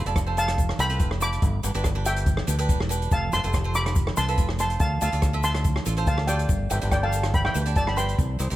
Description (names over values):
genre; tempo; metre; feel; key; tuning
calypso; 142 BPM; 4/4; straight; unclear; A4 = 437 Hz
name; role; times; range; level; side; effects
steel pan; melody; 0.0-8.6 s; D5 to D6; -27 LUFS; equal; tape echo
cavaquinho; accompaniment; 0.0-8.6 s; D4 to E5; -33 LUFS; right 4 dB; none
fingered electric bass; bass; 0.0-8.6 s; E1 to D2; -26 LUFS; equal; none
open jazz drum kit; drums; 0.1-8.6 s; hi-hat, kick drum, rim click; -26 LUFS; equal; none
egg shaker; percussion; 0.1-8.6 s; none; -37 LUFS; left 7 dB; none
room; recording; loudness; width
light reverb; none; -21 LUFS; side -15 dB against mid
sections
0.0-8.6 A section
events
none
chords
0.0 F; 1.4 G; 3.1 F; 4.8 Dm7; 6.5 Gadd9